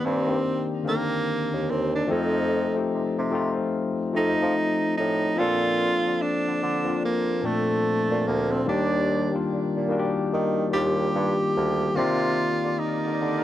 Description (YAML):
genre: R&B, neo-soul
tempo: 73 BPM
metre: 4/4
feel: swing 60% on 16ths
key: C minor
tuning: A4 = 440 Hz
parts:
  - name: warm tenor saxophone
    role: melody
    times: 0.0-13.4 s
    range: A3 to G4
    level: -26 LUFS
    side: right 2 dB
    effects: tape echo
  - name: barky tine electric piano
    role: accompaniment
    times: 0.0-13.4 s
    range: Bb2 to D5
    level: -26 LUFS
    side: left 4 dB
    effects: overdrive
  - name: warm bassoon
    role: bass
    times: 0.1-13.4 s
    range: D2 to F3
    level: -27 LUFS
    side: right 2 dB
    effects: none
  - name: lush unison pad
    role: sustained chords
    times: 12.7-13.4 s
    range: Bb4 to D6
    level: -37 LUFS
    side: right 1 dB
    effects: chorus, phaser
room: light reverb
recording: none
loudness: -22 LUFS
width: side -12 dB against mid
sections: 0.0-13.4 A section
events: none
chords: 0.0 Cm9; 2.1 F7; 5.4 Bbmaj9; 8.7 Ebmaj7; 12.0 Cm9